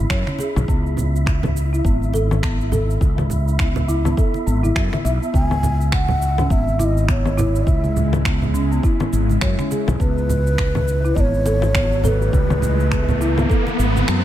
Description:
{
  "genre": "organic downtempo",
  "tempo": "103 BPM",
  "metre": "4/4",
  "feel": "swing 58% on 16ths",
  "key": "unclear",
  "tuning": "A4 = 440 Hz",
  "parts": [
    { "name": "folk marimba with medium mallets", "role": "arpeggios", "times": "0.0-14.2 s", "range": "B3 to E5", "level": "-26 LUFS", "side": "left 1 dB", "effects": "tape echo" },
    { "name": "mellow fretless electric bass", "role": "bass", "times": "0.0-14.2 s", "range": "G#1 to F#2", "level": "-19 LUFS", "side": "equal", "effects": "analog chorus, sidechain pumping" },
    { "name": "wind-like tuned noise texture", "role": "texture", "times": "0.0-14.2 s", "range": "E4 to E5", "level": "-32 LUFS", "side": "equal", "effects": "built-in reverb" },
    { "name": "electronic finger snaps, shaker and congas", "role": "drums", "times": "0.1-14.2 s", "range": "none", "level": "-26 LUFS", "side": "left 2 dB", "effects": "small room reverb" },
    { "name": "electronic kick drum", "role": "drums", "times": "0.1-13.6 s", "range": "none", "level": "-20 LUFS", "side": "equal", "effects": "small room reverb" },
    { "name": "congas", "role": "percussion", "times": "0.3-14.1 s", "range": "none", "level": "-26 LUFS", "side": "right 2 dB", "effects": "none" },
    { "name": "breathy mellow ney", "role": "melody", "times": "5.3-14.1 s", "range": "B4 to G#5", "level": "-25 LUFS", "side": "right 1 dB", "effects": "tape echo" },
    { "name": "bowed-like drone", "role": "sustained chords", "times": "7.4-14.2 s", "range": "C#3 to B4", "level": "-28 LUFS", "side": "left 2 dB", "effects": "built-in reverb, sidechain pumping" },
    { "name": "riser", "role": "sound effects", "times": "11.0-14.2 s", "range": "none", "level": "-26 LUFS", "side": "right 1 dB", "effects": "none" }
  ],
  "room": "digital ambience",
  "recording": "none",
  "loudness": "-16 LUFS",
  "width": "side -12 dB against mid",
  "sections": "0.0-14.2 A section",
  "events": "riser 11.0-14.2; kick drops out 14.1",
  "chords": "0.0 C#m7; 0.7 Asus2; 5.3 C#m7; 10.0 Asus2"
}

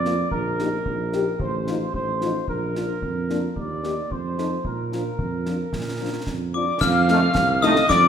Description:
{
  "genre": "military-style march for wind band",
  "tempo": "111 BPM",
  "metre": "2/4",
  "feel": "straight",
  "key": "Bb major",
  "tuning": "A4 = 440 Hz",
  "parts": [
    { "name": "dark trumpet section", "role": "melody", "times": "0.0-8.1 s", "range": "Bb4 to F5", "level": "-26 LUFS", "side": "equal", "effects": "none" },
    { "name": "mellow French horn section", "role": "accompaniment", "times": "0.0-7.7 s", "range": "F3 to A4", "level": "-29 LUFS", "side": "left 4 dB", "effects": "none" },
    { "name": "mellow tuba", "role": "bass", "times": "0.0-8.1 s", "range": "A1 to Bb2", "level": "-26 LUFS", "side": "right 4 dB", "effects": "none" },
    { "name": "concert snare drum, concert bass drum and clash cymbals", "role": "drums", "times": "0.1-8.1 s", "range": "none", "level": "-30 LUFS", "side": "equal", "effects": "none" },
    { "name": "glockenspiel with brass mallets", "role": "second line", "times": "6.5-8.1 s", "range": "D6 to F6", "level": "-24 LUFS", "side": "left 7 dB", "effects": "none" },
    { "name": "piccolo", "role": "second line", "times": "6.5-8.1 s", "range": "D6 to F6", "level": "-23 LUFS", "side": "left 4 dB", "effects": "none" },
    { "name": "bright trombone section", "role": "sustained chords", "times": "7.1-7.7 s", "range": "Eb3 to A3", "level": "-28 LUFS", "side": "right 2 dB", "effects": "none" }
  ],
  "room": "moderate concert hall reverb, RT60 2.0 s",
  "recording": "minimal, uncompressed stereo recording",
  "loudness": "-21 LUFS",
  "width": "side -8 dB against mid",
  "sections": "0.0-6.8 A section; 6.8-8.1 B section",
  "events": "none",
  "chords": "0.3 Eb/Bb; 1.4 F7/A; 2.5 Bb; 3.6 Eb; 4.1 F7; 4.6 Bb; 6.8 F7"
}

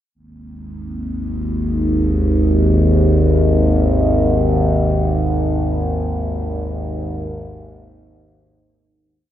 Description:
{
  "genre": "ambient",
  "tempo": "free time",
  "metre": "none",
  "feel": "none",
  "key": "unclear",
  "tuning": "A4 = 440 Hz",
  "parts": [
    { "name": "overtone-sweeping drone", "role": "solo", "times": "0.8-9.1 s", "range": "G#1 to D#2", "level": "-15 LUFS", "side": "equal", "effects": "chorus, built-in reverb, tape echo" }
  ],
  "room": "wet lush hall reverb, RT60 2.6 s",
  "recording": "dreamy mix soaked in reverb",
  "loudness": "-15 LUFS",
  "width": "side -11 dB against mid",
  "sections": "0.1-9.0 A section",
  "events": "fade-out 4.6-9.0",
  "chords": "0.1 G#5"
}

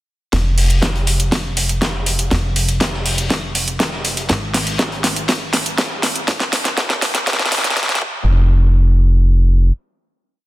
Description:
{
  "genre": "progressive house",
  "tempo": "121 BPM",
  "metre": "4/4",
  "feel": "straight",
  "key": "F minor",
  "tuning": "A4 = 443 Hz",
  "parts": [
    { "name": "tight sequencer bass", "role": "bass", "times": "0.3-9.7 s", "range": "Eb1 to Ab1", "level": "-16 LUFS", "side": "equal", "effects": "sidechain pumping" },
    { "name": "electronic kick drum", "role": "drums", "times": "0.3-8.1 s", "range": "none", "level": "-23 LUFS", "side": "equal", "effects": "high-pass filter on kick, studio reverb" },
    { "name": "pop drum kit", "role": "drums", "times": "0.3-8.0 s", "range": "hi-hat, snare drum", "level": "-18 LUFS", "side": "equal", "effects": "high-pass filter on snare, studio reverb, high-pass filter on hats" },
    { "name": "raw garage drum kit", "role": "drums", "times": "0.3-8.0 s", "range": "hi-hat, snare drum", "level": "-25 LUFS", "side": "left 2 dB", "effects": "sidechain pumping on hats, high-pass filter on hats, studio reverb, high-pass filter on snare, high-pass filter on room" }
  ],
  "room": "light reverb, small room ambience",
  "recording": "dense, heavily limited modern master, high-pass filter",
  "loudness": "-14 LUFS",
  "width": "side -17 dB against mid",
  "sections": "0.3-8.3 build; 8.3-10.5 final hit",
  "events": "build-up 0.3-8.3; drum fill 0.3-8.3; filter sweep 0.3-8.3",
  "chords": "none"
}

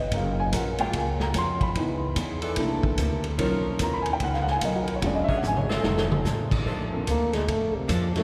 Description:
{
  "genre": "jazz, big band swing",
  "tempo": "147 BPM",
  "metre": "4/4",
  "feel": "swing 64% on 8ths",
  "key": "unclear",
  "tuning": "A4 = 441 Hz",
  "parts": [
    { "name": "dark grand piano", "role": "accompaniment", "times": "0.0-8.2 s", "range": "D3 to C6", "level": "-31 LUFS", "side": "equal", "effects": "none" },
    { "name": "upright bass", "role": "bass", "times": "0.0-8.2 s", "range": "E1 to G2", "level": "-31 LUFS", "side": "equal", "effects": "none" },
    { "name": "fingerpicked swing-style acoustic guitar", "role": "accompaniment", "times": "0.1-8.2 s", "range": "Bb2 to C#5", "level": "-38 LUFS", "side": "equal", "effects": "none" },
    { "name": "vintage drum kit", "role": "drums", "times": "0.1-8.2 s", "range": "crash cymbal, hi-hat, kick drum, ride cymbal, snare drum, toms", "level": "-32 LUFS", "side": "equal", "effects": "none" },
    { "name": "warm saxophone section", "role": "sustained chords", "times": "0.8-8.1 s", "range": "Db3 to A#4", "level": "-38 LUFS", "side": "equal", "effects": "none" },
    { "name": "breathy trombone", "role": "melody", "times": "7.1-8.2 s", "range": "C3 to Bb3", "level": "-29 LUFS", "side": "equal", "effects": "none" }
  ],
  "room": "wet cathedral reverb, RT60 5.8 s",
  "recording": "recorded in a church or concert hall",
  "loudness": "-26 LUFS",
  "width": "mono",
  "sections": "0.0-6.7 A section; 6.7-8.2 A section",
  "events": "grand piano solo 0.0-6.7; drum fill 5.4-6.3; trombone solo 6.7-8.2",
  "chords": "0.1 Gbmaj7; 1.8 Dbm7; 2.6 C13; 3.4 Bmaj9#11; 5.0 E13; 5.8 F7; 6.7 Bbmaj7"
}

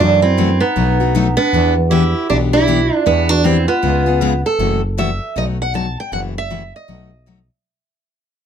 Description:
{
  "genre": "acoustic string swing (jazz manouche)",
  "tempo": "157 BPM",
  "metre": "4/4",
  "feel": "swing 62% on 8ths",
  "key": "E minor",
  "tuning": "A4 = 440 Hz",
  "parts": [
    { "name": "picked steel-string acoustic guitar", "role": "melody", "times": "0.0-7.5 s", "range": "B3 to A5", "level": "-17 LUFS", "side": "right 3 dB", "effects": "none" },
    { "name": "breathy clarinet", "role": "second line", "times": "0.0-4.4 s", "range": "D4 to G4", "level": "-23 LUFS", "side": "right 7 dB", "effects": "none" },
    { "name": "picked steel-string acoustic guitar", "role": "accompaniment", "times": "0.0-7.4 s", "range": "B2 to G#4", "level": "-20 LUFS", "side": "left 7 dB", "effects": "none" },
    { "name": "growling FM bass", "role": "bass", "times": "0.0-7.5 s", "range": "F#1 to F#2", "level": "-18 LUFS", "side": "equal", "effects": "none" }
  ],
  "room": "light reverb",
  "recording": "close, detailed microphones",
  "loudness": "-13 LUFS",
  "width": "side -8 dB against mid",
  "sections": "0.0-4.6 A section; 4.6-7.6 B section",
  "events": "fade-out 4.6-7.6",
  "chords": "0.0 F#m7b5; 0.8 B7; 1.5 Em7; 3.8 C#7; 4.6 F#m7b5; 5.4 B7; 6.1 F#m7b5; 6.9 B7"
}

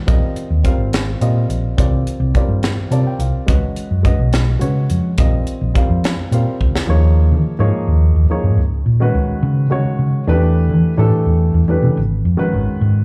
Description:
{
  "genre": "electric jazz fusion",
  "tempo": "71 BPM (dotted quarters)",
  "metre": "6/8",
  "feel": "straight",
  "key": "Bb dorian, Eb phrygian from 6.9 s",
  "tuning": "A4 = 440 Hz",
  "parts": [
    { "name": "dark baby grand piano", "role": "accompaniment", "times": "0.0-13.0 s", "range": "Eb3 to A5", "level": "-23 LUFS", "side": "equal", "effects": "slapback echo" },
    { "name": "hollow-body short-scale fingered electric bass", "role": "bass", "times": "0.1-13.0 s", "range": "Ab1 to E3", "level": "-17 LUFS", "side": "equal", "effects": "none" },
    { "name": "crisp fusion drum kit", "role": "drums", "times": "0.1-6.9 s", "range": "hi-hat, kick drum, snare drum", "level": "-20 LUFS", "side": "equal", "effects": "none" }
  ],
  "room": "small room ambience",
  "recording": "live gig heard through the venue's PA, club reverb",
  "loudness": "-16 LUFS",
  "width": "mono",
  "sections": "0.0-6.9 A section; 6.9-13.0 B section",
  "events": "grand piano fill 2.6-3.5; drum fill 6.6",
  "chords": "0.1 Bb9sus4; 1.8 C9sus4; 3.5 Db9sus4; 5.2 Bbsus24; 6.9 Eb9sus4; 8.6 Db9sus4; 10.3 Em7; 12.0 Abm7"
}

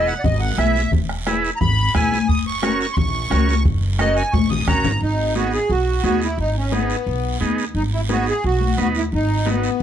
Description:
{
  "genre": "latin, cumbia",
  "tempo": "176 BPM",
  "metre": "4/4",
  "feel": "straight",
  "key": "G# minor",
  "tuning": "A4 = 439 Hz",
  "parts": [
    { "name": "accordion", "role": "melody", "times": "0.0-9.8 s", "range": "B3 to D#6", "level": "-22 LUFS", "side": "right 1 dB", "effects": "light tremolo tuning, plate reverb" },
    { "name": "combo organ", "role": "accompaniment", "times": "0.0-9.7 s", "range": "B3 to B4", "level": "-24 LUFS", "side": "right 3 dB", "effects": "none" },
    { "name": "upright bass", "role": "bass", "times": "0.0-9.8 s", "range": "E1 to D#2", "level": "-22 LUFS", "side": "equal", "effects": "none" },
    { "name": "guiro", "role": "percussion", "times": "0.1-9.8 s", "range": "none", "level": "-35 LUFS", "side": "right 6 dB", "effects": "none" },
    { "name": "bombo", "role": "percussion", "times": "0.2-4.8 s", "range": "none", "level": "-22 LUFS", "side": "right 1 dB", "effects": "none" },
    { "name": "congas", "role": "percussion", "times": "0.2-9.8 s", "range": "none", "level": "-24 LUFS", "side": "left 8 dB", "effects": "none" }
  ],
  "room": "light reverb",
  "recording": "dark, warm production",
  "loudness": "-17 LUFS",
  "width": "side -10 dB against mid",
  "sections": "0.0-5.0 A section; 5.0-9.8 B section",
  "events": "accordion solo 0.0-5.0; drum fill 4.0-5.0",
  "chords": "0.0 E; 2.3 F#; 5.0 G#m"
}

